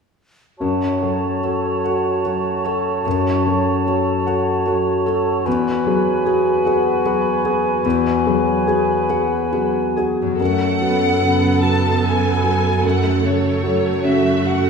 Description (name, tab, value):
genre	cinematic, emotional film score for orchestra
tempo	49 BPM (dotted quarters)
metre	6/8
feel	rubato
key	F# minor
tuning	A4 = 443 Hz
part	concert flute	second line	0.6-10.1 s	G#5 to A5	-25 LUFS	right 2 dB	none
part	mellow cor anglais	second line	0.6-10.1 s	B4 to C#5	-25 LUFS	right 3 dB	none
part	warm clarinet	second line	0.6-10.0 s	F#4	-25 LUFS	left 2 dB	none
part	clear grand piano	accompaniment	0.6-14.7 s	E2 to A4	-20 LUFS	left 1 dB	none
part	concert harp	arpeggios	0.6-14.3 s	E2 to F#5	-25 LUFS	left 6 dB	none
part	warm studio violin section	melody	10.4-14.7 s	C#5 to A5	-22 LUFS	left 3 dB	none
part	rich studio viola section	accompaniment	10.4-14.7 s	A3 to A4	-21 LUFS	right 2 dB	none
part	rich studio cello section	bass	10.4-14.7 s	F#2	-22 LUFS	right 4 dB	none
room	wet scoring stage reverb, RT60 1.7 s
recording	heard from further back in the room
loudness	-16 LUFS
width	side -5 dB against mid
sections	0.6-10.4 A section; 10.4-14.7 B section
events	none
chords	0.6 F#m; 5.5 Eadd9; 10.4 F#m